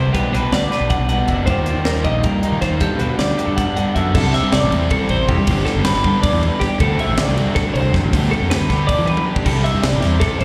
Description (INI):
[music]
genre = math rock and midwest emo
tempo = 316 BPM (eighths)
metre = 7/8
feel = straight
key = G major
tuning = A4 = 441 Hz
[part]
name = electric guitar through a small old amp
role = accompaniment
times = 0.0-5.5 s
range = G2 to B4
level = -28 LUFS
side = equal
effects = slapback echo
[part]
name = twelve-string electric guitar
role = arpeggios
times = 0.0-10.4 s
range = G4 to F#5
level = -24 LUFS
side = equal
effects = tape echo, slapback echo
[part]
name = crunchy overdriven guitar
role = riff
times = 0.0-10.4 s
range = G2 to G4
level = -25 LUFS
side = equal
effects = slapback echo
[part]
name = fuzz fingered electric bass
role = bass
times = 0.0-10.4 s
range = F#1 to E3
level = -22 LUFS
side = equal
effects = overdrive
[part]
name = crisp fusion drum kit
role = drums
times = 0.1-10.4 s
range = crash cymbal, hi-hat, kick drum, ride cymbal, snare drum, toms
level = -24 LUFS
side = equal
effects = none
[sound]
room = small room ambience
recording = live gig heard through the venue's PA, recital hall reverb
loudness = -17 LUFS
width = mono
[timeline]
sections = 0.0-4.1 A section; 4.1-10.4 B section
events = drum fill 9.2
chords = 0.1 Gmaj7/B; 1.5 Ebadd9; 2.8 Gmaj9; 4.1 C69; 5.5 G; 6.8 D7sus2; 8.1 G/D; 9.5 C69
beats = | 0.14 0.34 0.53 0.72 0.91 1.10 1.29 | 1.48 1.67 1.86 2.05 2.24 2.43 2.62 | 2.81 3.00 3.19 3.38 3.57 3.76 3.95 | 4.14 4.33 4.52 4.71 4.90 5.09 5.28 | 5.47 5.66 5.85 6.04 6.23 6.42 6.61 | 6.80 6.99 7.18 7.37 7.56 7.75 7.94 | 8.13 8.32 8.51 8.70 8.89 9.08 9.27 | 9.45 9.64 9.83 10.02 10.21 10.40